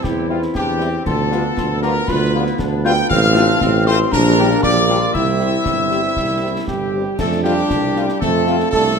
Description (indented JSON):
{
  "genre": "military-style march for wind band",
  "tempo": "118 BPM",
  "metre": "2/4",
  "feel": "straight",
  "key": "F major from 3.1 s",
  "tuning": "A4 = 439 Hz",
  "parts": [
    { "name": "warm trumpet section", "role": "melody", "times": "0.0-9.0 s", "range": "F4 to G5", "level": "-21 LUFS", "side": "right 1 dB", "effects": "none" },
    { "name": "mellow hollow piccolo", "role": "second line", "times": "0.0-9.0 s", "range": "F5 to G6", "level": "-25 LUFS", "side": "left 5 dB", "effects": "none" },
    { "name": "warm woodwind section", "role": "second line", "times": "0.0-9.0 s", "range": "C4 to A4", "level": "-24 LUFS", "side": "left 4 dB", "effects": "none" },
    { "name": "mellow trombone section", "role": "sustained chords", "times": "0.0-8.8 s", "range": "E3 to D4", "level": "-25 LUFS", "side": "right 2 dB", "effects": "none" },
    { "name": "mellow tuba", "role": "bass", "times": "0.0-9.0 s", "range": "G1 to F2", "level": "-19 LUFS", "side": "right 3 dB", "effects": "none" },
    { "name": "concert snare drum, concert bass drum and clash cymbals", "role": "drums", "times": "0.0-9.0 s", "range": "none", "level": "-28 LUFS", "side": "left 1 dB", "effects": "none" },
    { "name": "warm French horn section", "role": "accompaniment", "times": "0.3-8.6 s", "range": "G3 to G4", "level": "-25 LUFS", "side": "left 6 dB", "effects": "none" },
    { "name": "clear euphonium", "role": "second line", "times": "6.7-9.0 s", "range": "G3 to A3", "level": "-22 LUFS", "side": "right 5 dB", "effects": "none" }
  ],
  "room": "moderate scoring stage reverb, RT60 2.1 s",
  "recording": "faint mains hum",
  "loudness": "-14 LUFS",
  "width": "side -6 dB against mid",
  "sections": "0.0-7.2 A section; 7.2-9.0 B section",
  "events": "none",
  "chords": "0.0 C/E; 1.1 G7/D; 3.1 F/A; 4.1 Gm/Bb; 5.1 C; 7.2 F",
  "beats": "| 0.04 0.55 | 1.06 1.57 | 2.08 2.59 | 3.10 3.62 | 4.12 4.64 | 5.15 5.66 | 6.17 6.68 | 7.19 7.70 | 8.21 8.72"
}